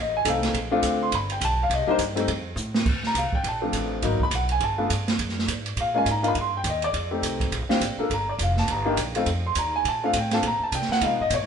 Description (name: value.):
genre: jazz, small-group swing and bop.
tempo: 206 BPM.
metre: 4/4.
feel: swing 61% on 8ths.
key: Bb major.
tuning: A4 = 440 Hz.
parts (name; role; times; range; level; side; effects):
warm grand piano; accompaniment; 0.0-11.5 s; F3 to C6; -24 LUFS; left 1 dB; none.
upright bass; bass; 0.0-11.5 s; F1 to Db3; -29 LUFS; equal; none.
open jazz drum kit; drums; 0.3-11.4 s; crash cymbal, hi-hat, kick drum, ride cymbal, snare drum; -28 LUFS; right 3 dB; none.
room: moderate stone room reverb, RT60 1.0 s.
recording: band playing live in one room, nothing above 10.8 kHz.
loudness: -22 LUFS.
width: side -7 dB against mid.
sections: 0.0-2.9 A section; 2.9-11.5 A section.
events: drum fill 2.6.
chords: 0.0 F7; 0.5 Bbmaj7; 1.1 G; 1.7 Cm7; 2.3 F; 2.9 Bbmaj7; 4.0 Abm7; 4.6 G9; 5.2 Gbmaj7; 6.4 Ebmaj7; 6.9 F7; 7.5 Bb6; 8.1 F69; 8.7 Cm7; 9.3 Ab69; 9.8 Bbmaj7.